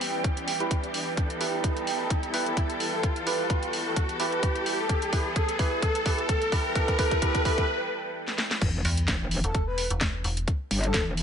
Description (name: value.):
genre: bass house.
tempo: 129 BPM.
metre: 4/4.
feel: swing 55% on 16ths.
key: E minor.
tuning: A4 = 442 Hz.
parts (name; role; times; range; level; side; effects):
warm studio string section; sustained chords; 0.0-8.6 s; E3 to A4; -35 LUFS; left 2 dB; sidechain pumping, low-pass filter.
garage drum kit; drums; 0.0-11.2 s; crash cymbal, hi-hat, snare drum; -31 LUFS; equal; none.
riser and sub drop; sound effects; 0.0-10.5 s; none; -32 LUFS; equal; none.
ethereal airy pad; texture; 0.0-7.7 s; E4 to G5; -36 LUFS; right 3 dB; ensemble chorus, built-in reverb, phaser, sidechain pumping.
electronic kick drum; drums; 0.2-11.0 s; none; -27 LUFS; equal; none.
percussive organ stab; stabs; 0.6-7.7 s; E4 to B4; -32 LUFS; right 3 dB; wide subtle chorus, sidechain pumping, digital delay.
breathy flute-like synth lead; melody; 2.0-11.0 s; A4 to B4; -33 LUFS; left 1 dB; ensemble chorus, digital delay.
metallic wobble bass; bass; 8.6-11.2 s; E1 to G1; -28 LUFS; equal; chorus, overdrive, sidechain pumping.
metallic FM bass; bass; 8.8-10.5 s; E1 to E2; -28 LUFS; equal; tube saturation, sidechain pumping.
room: light reverb, digital ambience.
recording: nothing above 10.8 kHz.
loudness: -24 LUFS.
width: side -8 dB against mid.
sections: 0.0-8.6 A section; 8.6-11.2 B section.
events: build-up 0.0-8.6; riser 0.0-7.7; filter sweep on synth stab 0.0-8.6; drum fill 1.2-7.7, 8.3-8.6; break 7.7-8.6; drop 8.6-11.2; impact 8.6-10.5.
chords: 0.0 Em; 8.6 N.C..